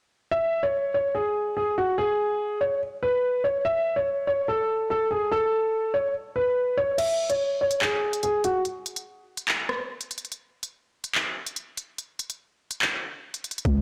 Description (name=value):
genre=hip hop, drill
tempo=144 BPM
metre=4/4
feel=half-time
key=C# minor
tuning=A4 = 440 Hz
part: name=dark concert grand piano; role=melody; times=0.3-8.6 s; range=F#4 to E5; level=-25 LUFS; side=equal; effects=low-pass filter, slapback echo
part: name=drill drum kit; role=drums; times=7.0-13.7 s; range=crash cymbal, handclaps, hi-hat, kick drum, rim click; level=-30 LUFS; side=equal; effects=none
part: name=growling 808-style bass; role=bass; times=13.7-13.8 s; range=C#2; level=-23 LUFS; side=equal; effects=transformer saturation
room=light reverb, digital ambience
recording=blown-out, overdriven recording, overdrive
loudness=-26 LUFS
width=mono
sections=0.3-7.0 A section; 7.0-13.8 B section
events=break 7.0-13.8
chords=none